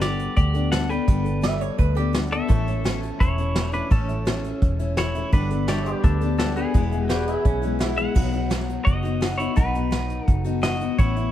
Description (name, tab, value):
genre	honky-tonk and classic country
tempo	170 BPM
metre	4/4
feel	straight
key	A mixolydian, B mixolydian from 8.2 s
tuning	A4 = 440 Hz
part	clean electric guitar	melody	0.0-11.3 s	B3 to G5	-29 LUFS	equal	none
part	picked steel-string acoustic guitar	accompaniment	0.0-11.3 s	E2 to A4	-27 LUFS	left 5 dB	none
part	vintage muted fingered electric bass	bass	0.0-11.3 s	E1 to D2	-25 LUFS	right 1 dB	none
part	vintage brush drum kit	drums	0.0-11.2 s	crash cymbal, hi-hat, kick drum, snare drum	-22 LUFS	equal	none
part	lap resonator guitar	second line	1.4-2.1, 7.1-8.1 s	C#4 to E5	-31 LUFS	right 5 dB	none
part	pedal steel guitar	sustained chords	2.5-8.2 s	G4 to E5	-34 LUFS	right 2 dB	none
room	light reverb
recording	heard from further back in the room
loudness	-20 LUFS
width	side -12 dB against mid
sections	0.0-8.2 A section; 8.2-11.3 A section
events	none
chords	0.0 Gadd9; 2.5 A; 5.3 Gadd9; 6.7 E; 8.2 B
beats	0.02 0.37 0.72 | 1.08 1.43 1.79 2.14 | 2.49 2.85 3.20 3.56 | 3.91 4.26 4.62 4.97 | 5.33 5.68 6.03 6.39 | 6.74 7.09 7.45 7.80 | 8.16 8.51 8.86 9.22 | 9.57 9.93 10.28 10.63 | 10.99